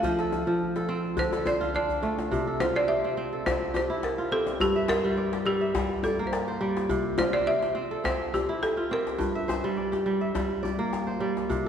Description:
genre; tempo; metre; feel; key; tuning
west african traditional, West African string and xylophone music; 105 BPM; 4/4; swing 54% on 16ths; unclear; A4 = 437 Hz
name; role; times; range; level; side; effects
balafon; melody; 0.0-10.6 s; G4 to F5; -28 LUFS; equal; none
kora; arpeggios; 0.0-11.7 s; G2 to E5; -28 LUFS; right 1 dB; none
djembe; percussion; 0.0-11.6 s; none; -32 LUFS; left 4 dB; none
room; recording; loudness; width
wet church reverb, RT60 2.5 s; recorded in a church or concert hall; -25 LUFS; side -8 dB against mid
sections
0.0-2.3 A section; 2.3-11.7 B section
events
balafon solo 0.0-2.3; drum fill 1.6-2.3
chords
0.0 F; 1.2 Dm; 2.3 C; 4.6 Gm; 6.9 C; 9.2 Gm

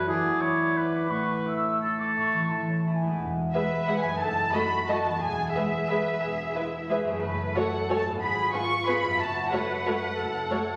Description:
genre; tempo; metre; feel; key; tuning
classical; 163-195 BPM; 3/4; rubato; A major, E major from 3.2 s; A4 = 439 Hz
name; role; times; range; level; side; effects
clear oboe; second line; 0.0-2.8 s; G#4 to C#5; -30 LUFS; equal; none
mellow clarinet; second line; 0.0-3.0 s; A3 to E4; -33 LUFS; equal; none
concert harp; arpeggios; 0.0-10.8 s; E2 to D5; -34 LUFS; equal; none
mellow flute section; second line; 0.1-3.2 s; G#5 to E6; -35 LUFS; equal; none
muted studio double bass section; bass; 3.2-10.5 s; E1 to Ab1; -43 LUFS; equal; none
muted studio violin section; melody; 3.5-10.8 s; E5 to C#6; -31 LUFS; equal; none
muted symphonic violin section; second line; 3.5-10.6 s; Ab4 to E5; -34 LUFS; equal; none
muted studio viola section; accompaniment; 3.5-10.6 s; G#3 to G#4; -36 LUFS; equal; none
muted studio cello section; bass; 3.5-10.8 s; E4 to B4; -34 LUFS; equal; none
room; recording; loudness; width
wet recital hall reverb, RT60 1.4 s; vinyl crackle; -27 LUFS; mono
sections
0.0-3.2 A section; 3.2-10.8 B section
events
none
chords
0.1 E7; 1.1 A; 3.2 E; 4.2 D#dim/F#; 5.2 E; 7.2 F#m; 8.2 Fdim/Ab; 9.2 F#m

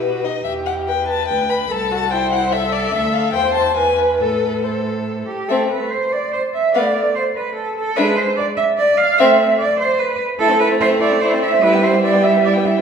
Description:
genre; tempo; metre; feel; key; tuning
quick classical-period movement for string quartet; 146 BPM; 3/4; rubato; A minor; A4 = 440 Hz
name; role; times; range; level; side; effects
warm violin; melody; 0.0-12.8 s; B4 to B5; -21 LUFS; left 7 dB; none
rich violin; second line; 0.0-12.8 s; B3 to C5; -22 LUFS; left 2 dB; none
warm viola; accompaniment; 0.0-12.8 s; G3 to E5; -22 LUFS; right 2 dB; none
clear cello; bass; 0.0-12.7 s; C2 to F5; -18 LUFS; right 2 dB; none
room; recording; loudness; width
wet recital hall reverb, RT60 1.7 s; heard from further back in the room; -15 LUFS; side -7 dB against mid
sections
0.0-5.5 A section; 5.5-12.8 B section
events
none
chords
0.0 B; 0.5 Em; 1.7 Am/C; 2.9 Dm; 3.3 Am/E; 3.8 E; 4.2 Am; 6.7 Bm7/A; 8.0 E7/G# (rootless); 9.2 Am; 11.6 Em/G

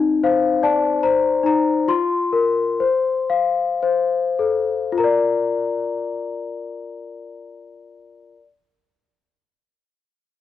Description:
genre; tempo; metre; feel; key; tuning
children's music, lullaby; 49-78 BPM; 3/4; rubato; Bb major; A4 = 438 Hz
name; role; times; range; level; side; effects
celesta; solo; 0.0-8.4 s; C4 to C6; -18 LUFS; left 4 dB; cassette tape
room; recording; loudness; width
light reverb, studio reverb; home recording on cassette; -17 LUFS; side -11 dB against mid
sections
0.0-5.0 A section; 5.0-8.6 B section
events
slowing down 0.0-5.0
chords
0.0 Cmadd9; 1.9 Fsus4; 2.8 F; 5.0 Bb

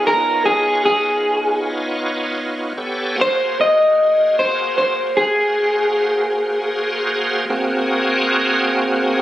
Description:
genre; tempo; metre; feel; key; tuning
blues; 51 BPM (dotted quarters); 12/8; straight; Ab mixolydian; A4 = 440 Hz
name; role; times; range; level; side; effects
electric guitar through a small old amp; melody; 0.0-7.5 s; Ab4 to Eb5; -15 LUFS; equal; none
bright tonewheel organ; sustained chords; 0.0-9.2 s; Bb3 to Db5; -20 LUFS; right 1 dB; slow rotary speaker, overdrive, chorus vibrato
room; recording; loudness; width
moderate studio reverb, RT60 0.8 s; recorded on a phone in the room, club reverb, compression; -15 LUFS; side -14 dB against mid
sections
0.0-9.2 A section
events
none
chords
0.0 Db9; 2.8 Ab9

